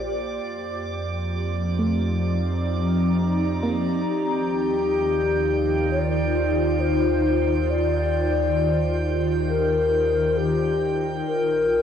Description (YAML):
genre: ambient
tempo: 67 BPM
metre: 4/4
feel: straight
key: Eb lydian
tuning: A4 = 442 Hz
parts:
  - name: ethereal airy pad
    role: sustained chords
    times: 0.0-11.8 s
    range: Bb2 to Bb5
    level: -24 LUFS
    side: equal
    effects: ensemble chorus, built-in reverb, phaser, shimmer reverb
  - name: soft round pluck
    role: arpeggios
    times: 0.0-4.5 s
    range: A3 to G4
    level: -31 LUFS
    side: right 2 dB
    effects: chorus, shimmer reverb, analog delay
  - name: warm sub bass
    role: bass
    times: 0.0-11.8 s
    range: Bb1 to F2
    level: -28 LUFS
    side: right 1 dB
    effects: none
  - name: drifting glass-harmonics texture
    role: texture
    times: 0.0-11.8 s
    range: D5 to G6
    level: -34 LUFS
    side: right 6 dB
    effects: chorus, built-in reverb, shimmer reverb
  - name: mellow hollow alto flute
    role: melody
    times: 4.1-11.8 s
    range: G4 to D5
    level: -23 LUFS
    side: left 4 dB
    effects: cassette tape, shimmer reverb, analog delay
room: wet studio reverb, RT60 0.6 s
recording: home recording on cassette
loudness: -20 LUFS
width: side -8 dB against mid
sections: 0.0-4.1 A section; 4.1-11.8 B section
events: none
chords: 0.4 F13sus4; 4.1 Ebmaj13; 11.3 Bb69